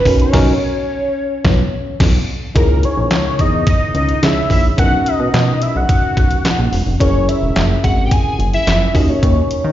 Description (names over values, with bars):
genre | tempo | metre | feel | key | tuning
early-eighties boogie funk | 108 BPM | 4/4 | straight | C# dorian | A4 = 440 Hz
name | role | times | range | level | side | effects
fat analog lead | melody | 0.0-9.6 s | A#4 to G#5 | -19 LUFS | left 1 dB | chorus, phaser, plate reverb, slapback echo, tape echo
mellow tine electric piano | accompaniment | 0.0-9.7 s | C#4 to C#5 | -22 LUFS | right 1 dB | plate reverb, slapback echo
chorused synth bass | bass | 0.1-9.7 s | E1 to D#3 | -16 LUFS | equal | none
detuned 8-bit digital drum machine | drums | 0.1-9.6 s | crash cymbal, handclaps, hi-hat, kick drum, snare drum | -16 LUFS | equal | overdrive
room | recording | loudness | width
light reverb | live gig heard through the venue's PA, recital hall reverb, nothing above 7.5 kHz | -12 LUFS | side -12 dB against mid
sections
0.0-2.6 A section; 2.6-9.7 B section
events
band accent 0.3-2.6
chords
0.1 Bmaj9; 2.6 C#m69; 4.8 Bmaj9; 7.0 F#9; 8.9 D#m7